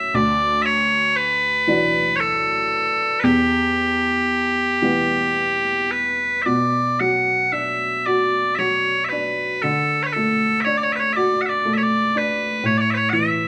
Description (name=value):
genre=celtic folk, Celtic slow air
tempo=37-41 BPM (dotted quarters)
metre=6/8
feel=rubato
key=unclear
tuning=A4 = 441 Hz
part: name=loud bright bagpipes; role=melody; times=0.0-13.5 s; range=G4 to F#5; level=-21 LUFS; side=equal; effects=none
part: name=dark upright piano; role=accompaniment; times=0.0-13.5 s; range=D2 to F#4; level=-25 LUFS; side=equal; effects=none
room=moderate stone room reverb, RT60 1.1 s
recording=band playing live in one room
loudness=-19 LUFS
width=mono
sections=0.0-6.5 A section; 6.5-13.5 B section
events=none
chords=0.1 Dadd9; 3.2 Em; 6.5 Bm; 9.6 D; 12.6 A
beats=| 0.13 1.67 | 3.22 4.82 | 6.45 8.06 | 9.63 11.15 | 12.63